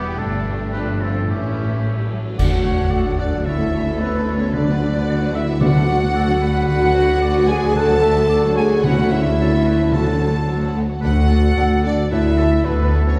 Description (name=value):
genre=cinematic, heroic adventure film score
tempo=111 BPM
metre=4/4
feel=straight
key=D major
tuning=A4 = 441 Hz
part: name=warm symphonic violin section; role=melody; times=0.0-13.2 s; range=D4 to A5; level=-32 LUFS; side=equal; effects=none
part: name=bright clarinet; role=second line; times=0.0-2.1 s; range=B3 to D4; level=-38 LUFS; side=equal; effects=none
part: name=clear oboe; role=second line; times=0.0-13.2 s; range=G4 to F#5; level=-33 LUFS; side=equal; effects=none
part: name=mellow silver concert flute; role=second line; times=0.0-13.2 s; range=B4 to A5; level=-30 LUFS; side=equal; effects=none
part: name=warm symphonic violin section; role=second line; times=0.0-13.0 s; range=A3 to F#5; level=-36 LUFS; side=equal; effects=none
part: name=warm symphonic viola section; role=accompaniment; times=0.0-13.0 s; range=D3 to F#4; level=-29 LUFS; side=equal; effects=none
part: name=mellow French horn section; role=sustained chords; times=0.0-13.2 s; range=E3 to A4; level=-23 LUFS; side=equal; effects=none
part: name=concert harp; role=arpeggios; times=0.0-13.2 s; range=E2 to A5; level=-30 LUFS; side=equal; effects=none
part: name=clear trumpet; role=stabs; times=0.0-2.1 s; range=B3 to D4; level=-36 LUFS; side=equal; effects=none
part: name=rich symphonic cello section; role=bass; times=0.0-13.1 s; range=D2 to A2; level=-26 LUFS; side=equal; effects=none
part: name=warm studio double bass section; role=bass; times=0.0-13.1 s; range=E1 to D2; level=-26 LUFS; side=equal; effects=none
part: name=mellow tuba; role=bass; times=2.4-13.1 s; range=D2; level=-27 LUFS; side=equal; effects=none
part: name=clash cymbals and concert bass drum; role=percussion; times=2.4-3.4 s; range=none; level=-26 LUFS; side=equal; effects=none
part: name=timpani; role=percussion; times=4.5-10.7 s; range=D3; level=-26 LUFS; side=equal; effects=none
room=wet scoring stage reverb, RT60 1.6 s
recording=heard from further back in the room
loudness=-18 LUFS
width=mono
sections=0.0-2.4 A section; 2.4-13.2 B section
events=band accent 2.4-2.9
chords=0.2 Gsus2; 1.3 A7; 2.4 D; 3.5 A/D; 4.5 Bm/D; 5.6 D; 6.7 Bm/D; 7.8 D; 8.8 A/D; 9.9 F#m/D; 11.0 D; 12.1 A/D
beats=| 0.19 0.73 1.29 1.84 | 2.39 2.93 3.47 4.01 | 4.54 5.08 5.62 6.15 | 6.69 7.23 7.76 8.30 | 8.84 9.39 9.94 10.48 | 11.03 11.57 12.11 12.65 | 13.19